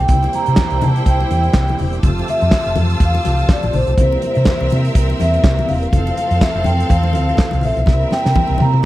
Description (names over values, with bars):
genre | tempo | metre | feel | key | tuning
disco | 124 BPM | 4/4 | swing 56% on 16ths | unclear | A4 = 440 Hz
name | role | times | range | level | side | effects
vibraphone with soft mallets | melody | 0.0-8.9 s | C5 to Bb5 | -20 LUFS | equal | none
clear studio string section | second line | 0.0-8.8 s | C4 to E6 | -24 LUFS | right 1 dB | none
tonewheel organ | sustained chords | 0.0-8.9 s | C3 to G4 | -27 LUFS | right 2 dB | overdrive, chorus vibrato, slow rotary speaker
hollow-body short-scale fingered electric bass | bass | 0.0-8.9 s | E1 to C3 | -17 LUFS | equal | none
warm soul drum kit | drums | 0.1-8.8 s | handclaps, hi-hat, kick drum, snare drum, toms | -14 LUFS | equal | none
congas | percussion | 0.1-8.9 s | none | -25 LUFS | left 4 dB | none
room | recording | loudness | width
small room ambience | dry, close 1970s-style studio recording | -13 LUFS | side -16 dB against mid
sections
0.0-8.9 A section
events
drum fill 7.9-8.9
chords
0.1 C7; 2.0 Fmaj7; 4.0 C7; 5.9 Fmaj7; 7.9 C7